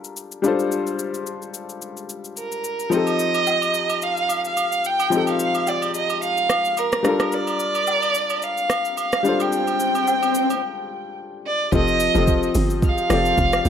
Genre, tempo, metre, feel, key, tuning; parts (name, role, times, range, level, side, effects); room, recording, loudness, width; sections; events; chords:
amapiano; 109 BPM; 4/4; swing 55% on 16ths; G minor; A4 = 441 Hz
clear grand piano; accompaniment; 0.0-13.7 s; F3 to Eb5; -24 LUFS; left 4 dB
smooth R&B drum kit; drums; 0.0-13.7 s; hi-hat, kick drum, rim click, shaker; -26 LUFS; right 1 dB
warm violin; melody; 2.4-13.7 s; Bb4 to G5; -21 LUFS; right 1 dB; digital delay
agogo bells and woodblock; percussion; 3.1-10.6 s; -30 LUFS; right 7 dB
swell; sound effects; 9.2-10.6 s; -26 LUFS; equal
hollow log drum bass; bass; 11.7-13.7 s; F1 to A1; -22 LUFS; right 2 dB
light reverb, small room ambience; -18 LUFS; side -8 dB against mid
0.0-11.7 A section; 11.7-13.7 B section
swell 9.2-11.7; break 10.6-11.7; drop 11.7-13.7
0.0 Gm7; 2.9 F7; 7.0 Gm7; 11.7 F7